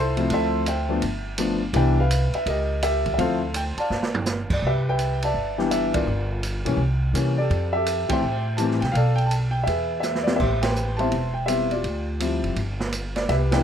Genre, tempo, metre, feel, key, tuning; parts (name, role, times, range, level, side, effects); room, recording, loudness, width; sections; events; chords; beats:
jazz piano trio; 166 BPM; 4/4; swing 64% on 8ths; C major; A4 = 441 Hz
warm grand piano; melody; 0.0-13.6 s; E3 to A5; -24 LUFS; left 2 dB
upright bass; bass; 0.0-13.6 s; E1 to C3; -25 LUFS; equal
open jazz drum kit; drums; 0.2-13.6 s; crash cymbal, hi-hat, kick drum, ride cymbal, snare drum, toms; -30 LUFS; right 3 dB
little or no reverb; close, detailed microphones; -21 LUFS; side -9 dB against mid
0.0-4.6 A section; 4.6-13.6 B section
drum fill 3.9-4.3, 10.0-10.4; band accent 5.9, 8.1, 10.6, 13.5
0.3 Dm9; 1.0 G7; 1.7 Cmaj7; 2.5 C#dim7; 3.2 Dm9; 3.9 Gsus2; 4.6 Cmaj9; 6.1 Gm7; 6.8 C7b9; 7.5 Fmaj9; 9.0 Bm7b5; 9.7 E; 10.4 Am9; 11.8 Dm11; 12.6 G5
| 0.31 0.67 1.03 1.39 | 1.75 2.11 2.47 2.83 | 3.19 3.55 3.91 4.27 | 4.63 4.99 5.35 5.71 | 6.07 6.43 6.79 7.15 | 7.51 7.87 8.23 8.59 | 8.95 9.31 9.68 10.04 | 10.40 10.76 11.12 11.48 | 11.84 12.21 12.57 12.93 | 13.29